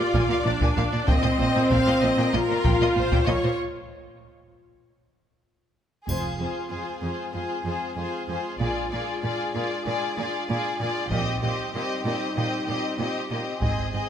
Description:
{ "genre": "cinematic, epic orchestral film score", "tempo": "96 BPM", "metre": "4/4", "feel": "straight", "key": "unclear", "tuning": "A4 = 439 Hz", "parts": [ { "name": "warm symphonic violin section", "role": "melody", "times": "0.0-14.1 s", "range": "C5 to Ab5", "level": "-33 LUFS", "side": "left 5 dB", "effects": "none" }, { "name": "clear symphonic violin section", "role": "second line", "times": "0.0-14.1 s", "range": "G4 to F5", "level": "-30 LUFS", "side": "left 2 dB", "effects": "none" }, { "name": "rich symphonic viola section", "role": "accompaniment", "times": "0.0-14.1 s", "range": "C4 to F4", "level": "-31 LUFS", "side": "equal", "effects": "none" }, { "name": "mellow French horn section", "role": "sustained chords", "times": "0.0-14.1 s", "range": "G3 to F4", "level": "-29 LUFS", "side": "left 2 dB", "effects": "none" }, { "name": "rich symphonic cello section", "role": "bass", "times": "0.0-14.0 s", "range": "F2 to Bb2", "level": "-30 LUFS", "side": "right 2 dB", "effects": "none" }, { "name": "taiko ensemble", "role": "drums", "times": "0.1-7.3, 11.1-14.1 s", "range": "none", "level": "-28 LUFS", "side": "equal", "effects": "none" }, { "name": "rich symphonic double bass section", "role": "bass", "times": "0.2-13.9 s", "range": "F1 to Bb1", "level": "-30 LUFS", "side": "right 3 dB", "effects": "none" }, { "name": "triangle and cymbal swell", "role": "percussion", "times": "6.1-7.3, 13.6-14.1 s", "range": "none", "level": "-42 LUFS", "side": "left 2 dB", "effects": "none" }, { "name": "reverse cymbal", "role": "sound effects", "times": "13.6-14.1 s", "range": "none", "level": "barely audible", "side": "none", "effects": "none" } ], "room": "moderate concert hall reverb, RT60 2.3 s", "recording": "close, detailed microphones", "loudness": "-22 LUFS", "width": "side -9 dB against mid", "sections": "0.0-6.1 A section; 6.1-14.1 B section", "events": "break 3.6-6.1; drum fill 5.5-6.1", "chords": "0.0 Bb; 1.1 Eb5/Bb; 3.6 N.C.; 6.1 Fm; 8.6 Bb7; 11.1 Eb6/Bb" }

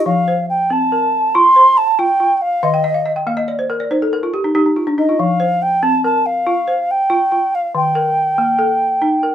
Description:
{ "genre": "west african traditional, West African string and xylophone music", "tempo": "94 BPM (dotted quarters)", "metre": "12/8", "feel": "straight", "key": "F mixolydian", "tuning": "A4 = 440 Hz", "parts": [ { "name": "mellow alto ocarina", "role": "melody", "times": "0.0-9.3 s", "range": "Eb5 to C6", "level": "-13 LUFS", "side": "right 1 dB", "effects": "none" }, { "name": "balafon", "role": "arpeggios", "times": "0.0-9.3 s", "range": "Eb3 to G5", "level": "-18 LUFS", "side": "left 1 dB", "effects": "none" } ], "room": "light reverb", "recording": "rough home demo mix", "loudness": "-13 LUFS", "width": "side -10 dB against mid", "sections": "0.1-9.3 A section", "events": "balafon fill 2.6-5.2", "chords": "0.1 F; 2.6 Eb5; 5.2 F5; 7.7 Eb" }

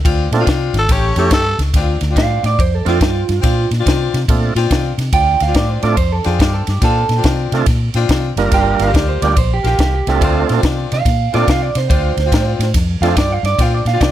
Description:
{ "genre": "electric blues shuffle", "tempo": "142 BPM", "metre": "4/4", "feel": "swing 65% on 8ths", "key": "D minor", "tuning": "A4 = 442 Hz", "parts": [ { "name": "warm saxophone section", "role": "stabs", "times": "0.0-14.1 s", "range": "A3 to G4", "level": "-22 LUFS", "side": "left 8 dB", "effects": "plate reverb" }, { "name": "vintage muted fingered electric bass", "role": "bass", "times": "0.1-14.1 s", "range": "F#1 to C3", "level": "-17 LUFS", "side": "equal", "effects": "none" }, { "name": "compact cocktail drum kit", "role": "drums", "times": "0.1-14.1 s", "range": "kick drum, ride cymbal, snare drum", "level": "-17 LUFS", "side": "equal", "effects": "none" }, { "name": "tonewheel organ", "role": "accompaniment", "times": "0.3-13.2 s", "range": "G3 to Bb4", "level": "-20 LUFS", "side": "right 6 dB", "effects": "slow rotary speaker, overdrive, plate reverb" }, { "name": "growling tenor saxophone", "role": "melody", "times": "0.8-1.6 s", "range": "A4 to C#5", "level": "-19 LUFS", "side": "equal", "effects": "plate reverb" }, { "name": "electric guitar through a small old amp", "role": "second line", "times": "2.2-14.1 s", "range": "F4 to G5", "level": "-19 LUFS", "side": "right 7 dB", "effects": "plate reverb" } ], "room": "light reverb", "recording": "none", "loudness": "-12 LUFS", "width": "side -12 dB against mid", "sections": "0.0-1.7 A section; 1.7-14.1 A section", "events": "tenor saxophone solo 0.0-1.7; clean electric guitar solo 1.7-14.1", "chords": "0.0 Dm7; 0.9 A7; 1.7 Dm7; 8.5 Gm7; 10.2 Dm7" }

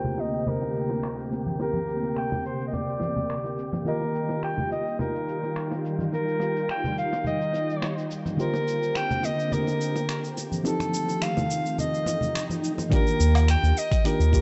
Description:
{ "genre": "sunset chillout", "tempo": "106 BPM", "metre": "4/4", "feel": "swing 53% on 16ths", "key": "unclear", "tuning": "A4 = 440 Hz", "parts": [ { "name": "clear soprano saxophone", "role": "melody", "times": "0.0-14.4 s", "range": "A4 to G5", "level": "-32 LUFS", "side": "equal", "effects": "tape echo" }, { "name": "mellow FM electric piano", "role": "accompaniment", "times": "0.0-14.4 s", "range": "D3 to Eb5", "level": "-35 LUFS", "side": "equal", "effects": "chorus, phaser, cassette tape, tape echo" }, { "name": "soft string machine", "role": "sustained chords", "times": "0.0-12.9 s", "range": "D2 to G4", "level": "-34 LUFS", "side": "equal", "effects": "ensemble chorus" }, { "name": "congas and bongos", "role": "percussion", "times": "0.0-12.9 s", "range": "none", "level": "-35 LUFS", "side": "equal", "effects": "none" }, { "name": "wind-like tuned noise texture", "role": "texture", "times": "0.0-12.9 s", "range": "G4 to G5", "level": "-44 LUFS", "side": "equal", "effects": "none" }, { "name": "dusty soul sampler-style drum kit", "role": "drums", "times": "0.1-14.4 s", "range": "cabasa, finger snaps, hi-hat, woodblock", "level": "-38 LUFS", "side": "equal", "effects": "overdrive, studio reverb" }, { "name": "swell", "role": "sound effects", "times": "12.3-12.9 s", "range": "none", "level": "-38 LUFS", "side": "equal", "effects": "none" }, { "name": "electronic kick drum", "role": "drums", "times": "12.9-14.4 s", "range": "none", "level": "-25 LUFS", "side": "equal", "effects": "overdrive, studio reverb" }, { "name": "round analog bass", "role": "bass", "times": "13.2-14.4 s", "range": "Eb2", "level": "-21 LUFS", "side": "equal", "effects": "none" } ], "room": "moderate lush hall reverb, RT60 2.9 s", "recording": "dark, warm production, low-pass filter, nothing above 8.0 kHz", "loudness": "-26 LUFS", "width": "mono", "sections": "0.0-12.9 A section; 12.9-14.4 B section", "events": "filter sweep 0.0-12.9; swell 12.3-12.9", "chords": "0.0 Bb69/D; 3.9 Ebadd9; 8.4 Bb69/D; 10.7 F7; 12.9 Ebmaj9" }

